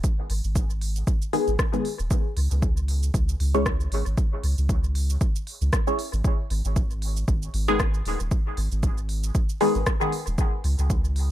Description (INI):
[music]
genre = dub techno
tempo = 116 BPM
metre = 4/4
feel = swing 56% on 16ths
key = G# minor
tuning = A4 = 440 Hz
[part]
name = deep house drum kit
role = drums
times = 0.0-11.3 s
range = hi-hat, rim click, shaker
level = -34 LUFS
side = equal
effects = dub echo
[part]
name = electronic kick drum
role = drums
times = 0.0-11.0 s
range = none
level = -24 LUFS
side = equal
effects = none
[part]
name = soft dub sub bass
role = bass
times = 0.3-11.3 s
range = D#1 to C#2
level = -24 LUFS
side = equal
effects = sidechain pumping
[part]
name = filtered dub chord stab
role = stabs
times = 1.3-10.1 s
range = D#3 to C#5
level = -26 LUFS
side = left 2 dB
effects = phaser, cassette tape, sidechain pumping, dub echo
[sound]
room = digital ambience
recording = faint mains hum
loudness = -22 LUFS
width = side -13 dB against mid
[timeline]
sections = 0.0-11.3 A section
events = none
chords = 0.0 G#m; 2.1 C#5; 6.2 G#5; 10.4 N.C.